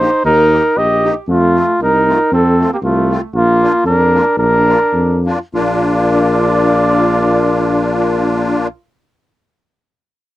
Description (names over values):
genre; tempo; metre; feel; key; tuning
alpine folk, alpine dance band; 98-119 BPM; 2/4; swing 54% on 8ths, rubato; Bb major; A4 = 440 Hz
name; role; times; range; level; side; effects
warm flugelhorn; melody; 0.0-8.7 s; F4 to Eb5; -14 LUFS; equal; none
dark trumpet; second line; 0.0-8.7 s; A3 to G4; -21 LUFS; right 4 dB; slapback echo
musette accordion; accompaniment; 0.0-8.7 s; A3 to G4; -16 LUFS; left 2 dB; none
mellow tuba; bass; 0.0-8.7 s; Bb1 to F2; -16 LUFS; equal; none
room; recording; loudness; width
light reverb; dry, close 1970s-style studio recording; -11 LUFS; side -15 dB against mid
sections
0.0-5.5 A section; 5.5-7.9 B section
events
slowing down 3.3-5.5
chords
0.0 Eb; 1.3 F7; 3.3 Bb